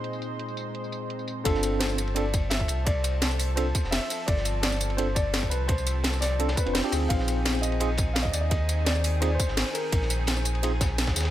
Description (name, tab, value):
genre	liquid drum and bass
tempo	170 BPM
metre	4/4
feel	straight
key	unclear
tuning	A4 = 440 Hz
part	dark grand piano	melody	0.0-10.1 s	F4 to F5	-33 LUFS	left 1 dB	ping-pong delay
part	tine electric piano	accompaniment	0.0-10.7 s	Bb2 to B4	-32 LUFS	right 1 dB	medium stereo tremolo, ping-pong delay
part	lush unison pad	sustained chords	0.0-11.3 s	Eb3 to C5	-36 LUFS	equal	chorus, sidechain pumping
part	drum and bass drum kit	drums	0.0-11.2 s	hi-hat, rim click, snare drum, tambourine	-30 LUFS	equal	overdrive, low-pass filter on hats, low-pass filter on perc, low-pass filter on snare
part	sub bass with octave	bass	1.5-11.3 s	F1 to Eb2	-27 LUFS	equal	none
part	crunchy breakbeat drum kit	drums	1.5-11.3 s	hi-hat, ride cymbal, snare drum	-36 LUFS	equal	high-pass filter on cymbals, high-pass filter on hats, high-pass filter on snare, high-pass filter on room
part	electronic kick drum	drums	1.5-11.1 s	none	-27 LUFS	equal	overdrive
room	small room reverb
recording	none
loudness	-24 LUFS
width	side -13 dB against mid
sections	0.0-1.5 A section; 1.5-11.3 B section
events	drop 1.5-11.3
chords	0.0 Bb9sus4; 1.5 G9sus4; 7.1 Bb9sus4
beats	| 0.04 0.40 0.75 1.10 | 1.46 1.81 2.16 2.51 | 2.87 3.22 3.57 3.93 | 4.28 4.63 4.99 5.34 | 5.69 6.04 6.40 6.75 | 7.10 7.46 7.81 8.16 | 8.51 8.87 9.22 9.57 | 9.93 10.28 10.63 10.98